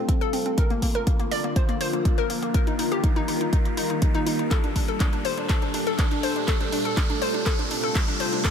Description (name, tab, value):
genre	progressive house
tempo	122 BPM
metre	4/4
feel	straight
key	unclear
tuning	A4 = 440 Hz
part	evolving wavetable pad	sustained chords	0.0-8.5 s	Bb2 to Bb4	-28 LUFS	left 1 dB	chorus, built-in reverb, sidechain pumping
part	glassy wavetable pluck	arpeggios	0.0-8.5 s	Bb3 to D5	-28 LUFS	left 2 dB	chorus, sidechain pumping, ping-pong delay
part	riser	sound effects	0.2-8.5 s	none	-36 LUFS	right 3 dB	none
part	deep house drum kit	drums	0.1-8.5 s	handclaps, hi-hat	-32 LUFS	equal	sidechain pumping on hats
part	electronic kick drum	drums	0.1-8.5 s	none	-23 LUFS	equal	none
room	light reverb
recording	none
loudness	-21 LUFS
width	side -7 dB against mid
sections	0.0-8.5 A section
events	build-up 0.0-8.5; riser 0.2-8.5; drum fill 4.5-8.5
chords	0.0 Fadd9; 0.6 Bb; 2.5 Ebadd9; 4.5 Gmadd9; 6.5 Fadd9